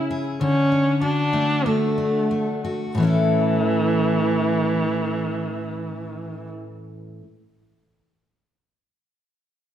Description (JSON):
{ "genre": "pop", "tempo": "87-99 BPM", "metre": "4/4", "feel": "swing 55% on 16ths", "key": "A major", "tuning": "A4 = 439 Hz", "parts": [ { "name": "dark viola", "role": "melody", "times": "0.0-6.5 s", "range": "E3 to D4", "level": "-23 LUFS", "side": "equal", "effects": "none" }, { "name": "picked steel-string acoustic guitar", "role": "accompaniment", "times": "0.0-7.3 s", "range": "A2 to A4", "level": "-23 LUFS", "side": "equal", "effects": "none" } ], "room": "wet scoring stage reverb, RT60 1.5 s, small room ambience", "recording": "big arena sound", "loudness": "-19 LUFS", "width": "side -10 dB against mid", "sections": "0.0-3.0 A section; 3.0-5.7 B section", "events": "slowing down 0.0-3.0", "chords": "0.4 D; 3.0 A", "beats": "| 0.39 1.01 1.65 2.30 | 2.97 3.66 4.35 5.03" }